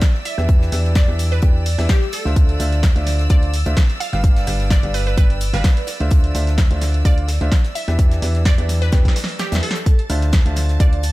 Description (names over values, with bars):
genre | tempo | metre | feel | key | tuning
piano house | 128 BPM | 4/4 | swing 54% on 16ths | D dorian | A4 = 440 Hz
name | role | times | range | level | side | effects
warm studio string section | sustained chords | 0.0-11.1 s | D5 to A6 | -31 LUFS | right 2 dB | sidechain pumping
electronic kick drum | drums | 0.0-10.9 s | none | -14 LUFS | equal | none
gated 80s drum kit | drums | 0.0-11.1 s | hi-hat, snare drum | -36 LUFS | left 2 dB | high-pass filter on hats, high-pass filter on snare, high-pass filter on room
punchy analog drum machine | drums | 0.0-11.1 s | hi-hat, rim click, snare drum | -26 LUFS | right 1 dB | none
glassy wavetable pluck | melody | 0.3-11.0 s | G4 to F5 | -29 LUFS | right 1 dB | chorus, dub echo
clear concert grand piano | riff | 0.4-11.0 s | D3 to G5 | -28 LUFS | right 1 dB | sidechain pumping
solid FM bass | bass | 0.4-11.1 s | G1 to E2 | -18 LUFS | equal | sidechain pumping
room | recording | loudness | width
small room ambience | none | -14 LUFS | side -18 dB against mid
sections
0.0-11.1 A section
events
drum fill 8.9-9.9; break 9.4-9.9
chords
0.3 Em7; 2.4 Dm9; 4.0 G7; 5.9 Dm9; 7.8 Em7; 9.9 Dm9